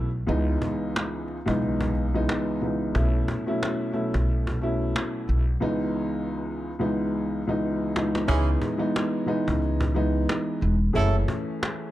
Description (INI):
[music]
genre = hip hop, boom-bap hip-hop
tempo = 90 BPM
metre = 4/4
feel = swing 57% on 16ths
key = C# minor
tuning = A4 = 439 Hz
[part]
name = dark upright piano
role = accompaniment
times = 0.0-11.9 s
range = C#2 to G#4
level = -26 LUFS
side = equal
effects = cassette tape
[part]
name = upright bass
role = bass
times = 0.0-11.2 s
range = E1 to C#2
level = -24 LUFS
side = equal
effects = none
[part]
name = cajon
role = drums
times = 0.3-11.8 s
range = none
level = -31 LUFS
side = equal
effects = none
[part]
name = warm horn section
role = stabs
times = 8.3-11.2 s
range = E3 to A4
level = -31 LUFS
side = right 4 dB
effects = slapback echo
[sound]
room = light reverb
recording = dark, warm production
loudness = -23 LUFS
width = side -15 dB against mid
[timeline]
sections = 0.0-8.3 A section; 8.3-11.9 B section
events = drum fill 7.0-8.3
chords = 0.3 C#m7; 3.0 B7sus4; 5.6 C#m7; 11.0 F#m7